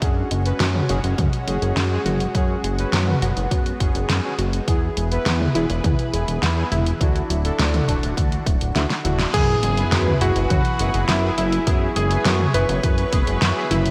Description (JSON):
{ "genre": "synthwave", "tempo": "103 BPM", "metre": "4/4", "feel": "straight", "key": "unclear", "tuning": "A4 = 440 Hz", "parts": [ { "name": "lush unison pad", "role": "sustained chords", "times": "0.0-13.9 s", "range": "D3 to C#5", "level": "-32 LUFS", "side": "equal", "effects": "chorus, phaser, sidechain pumping" }, { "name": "analog pluck", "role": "arpeggios", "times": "0.0-13.9 s", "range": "E3 to F#4", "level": "-33 LUFS", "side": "equal", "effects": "none" }, { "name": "analog synth brass", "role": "stabs", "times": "0.0-13.7 s", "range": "B3 to B4", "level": "-31 LUFS", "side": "equal", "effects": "chorus, tape echo, slapback echo" }, { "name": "fat analog bass", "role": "bass", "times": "0.0-13.9 s", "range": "D1 to F#2", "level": "-24 LUFS", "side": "equal", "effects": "tube saturation, sidechain pumping" }, { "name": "electronic kick drum", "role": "drums", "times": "0.0-13.2 s", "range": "none", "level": "-24 LUFS", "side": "equal", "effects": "none" }, { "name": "pop drum kit", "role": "drums", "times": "0.0-13.9 s", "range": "crash cymbal, hi-hat, snare drum, toms", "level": "-26 LUFS", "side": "equal", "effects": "slapback echo" }, { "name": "warm electric grand piano", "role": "melody", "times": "9.3-13.9 s", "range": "E4 to B4", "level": "-27 LUFS", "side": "equal", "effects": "tape echo, slapback echo" }, { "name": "string machine, violins", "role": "second line", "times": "9.3-13.9 s", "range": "E4 to B4", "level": "-34 LUFS", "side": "equal", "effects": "ensemble chorus, tape echo, slapback echo" }, { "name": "sub drop", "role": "sound effects", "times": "9.3-11.7 s", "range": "none", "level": "-30 LUFS", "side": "equal", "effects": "none" } ], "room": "moderate lush hall reverb, RT60 2.9 s", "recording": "big arena sound", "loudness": "-20 LUFS", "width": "mono", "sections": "0.0-9.3 A section; 9.3-13.9 B section", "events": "drum fill 8.8-9.3; band accent 9.2; impact 9.3-11.7", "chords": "0.0 F#sus2; 4.7 E; 7.0 Dadd9; 9.3 E/F#" }